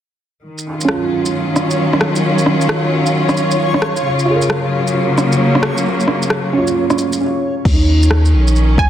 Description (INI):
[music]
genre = future garage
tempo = 133 BPM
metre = 4/4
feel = swing 65% on 16ths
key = Eb minor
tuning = A4 = 440 Hz
[part]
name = clear studio string section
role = sustained chords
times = 0.4-8.9 s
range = Db3 to F4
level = -17 LUFS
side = left 1 dB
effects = sidechain pumping
[part]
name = backwards swelling texture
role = texture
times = 1.5-8.9 s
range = Db5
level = -24 LUFS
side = right 1 dB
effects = built-in reverb
[part]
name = deep house drum kit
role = drums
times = 0.6-8.7 s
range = crash cymbal, rim click, shaker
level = -20 LUFS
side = equal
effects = overdrive, vintage 12-bit sampler grit, soft clipping on snare
[part]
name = felt-muted upright piano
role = accompaniment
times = 0.8-8.9 s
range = Db4 to Bb4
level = -20 LUFS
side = right 3 dB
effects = sidechain pumping, low-pass filter, tape echo
[part]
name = warm sub bass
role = bass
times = 7.7-8.9 s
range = Bb1 to Eb2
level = -12 LUFS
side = equal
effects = sidechain pumping
[part]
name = electronic kick drum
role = drums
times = 7.7-8.9 s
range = none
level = -13 LUFS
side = equal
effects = overdrive, vintage 12-bit sampler grit
[part]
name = glassy wavetable pluck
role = melody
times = 8.8-8.9 s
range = Ab5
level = -16 LUFS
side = right 3 dB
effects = chorus
[sound]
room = moderate lush hall reverb, RT60 2.0 s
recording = dense, heavily limited modern master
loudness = -13 LUFS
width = side -10 dB against mid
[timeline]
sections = 0.4-7.7 A section; 7.7-8.9 B section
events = filter sweep on felt piano 0.4-7.7; stop 7.2-7.7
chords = 0.4 Ebm9; 4.0 Gbmaj7/Db; 7.7 Eb7(no3)